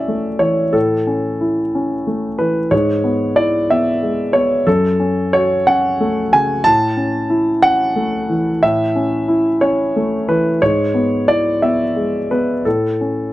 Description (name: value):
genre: neoclassical minimalist piano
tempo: 60 BPM (dotted quarters)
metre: 6/8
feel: rubato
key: A major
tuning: A4 = 441 Hz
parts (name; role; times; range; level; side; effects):
- warm concert grand piano; solo; 0.0-13.3 s; F#2 to A5; -14 LUFS; equal; none
room: light reverb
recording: dry, close 1970s-style studio recording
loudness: -14 LUFS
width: side -16 dB against mid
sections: 0.0-13.3 A section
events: none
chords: 0.0 A; 2.7 E/G#; 4.7 F#m; 6.6 A; 10.6 E/G#; 12.6 A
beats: | 0.75 1.75 | 2.72 3.69 | 4.66 5.67 | 6.65 7.62 | 8.62 9.61 | 10.60 11.61 | 12.65